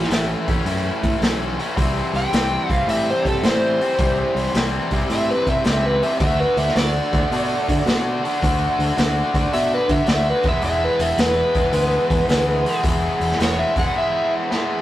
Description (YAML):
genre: blues rock power trio and southern rock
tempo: 108 BPM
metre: 4/4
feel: swing 67% on 8ths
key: unclear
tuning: A4 = 440 Hz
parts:
  - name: overdriven slide guitar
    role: melody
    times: 0.0-14.3 s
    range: A4 to G5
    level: -21 LUFS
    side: equal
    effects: none
  - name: distorted electric guitar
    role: riff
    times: 0.0-14.8 s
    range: A2 to F#4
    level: -22 LUFS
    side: equal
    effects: overdrive
  - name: picked electric bass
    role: bass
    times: 0.0-13.9 s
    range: E1 to D3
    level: -24 LUFS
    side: equal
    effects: none
  - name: raw garage drum kit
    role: drums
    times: 0.0-14.7 s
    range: hi-hat, kick drum, snare drum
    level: -23 LUFS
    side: equal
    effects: none
room: moderate studio reverb, RT60 0.6 s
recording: rough rehearsal-room recording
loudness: -17 LUFS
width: side -14 dB against mid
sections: 0.0-14.8 A section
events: drum fill 14.5-14.8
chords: 0.0 A; 1.8 C; 6.2 D; 10.4 E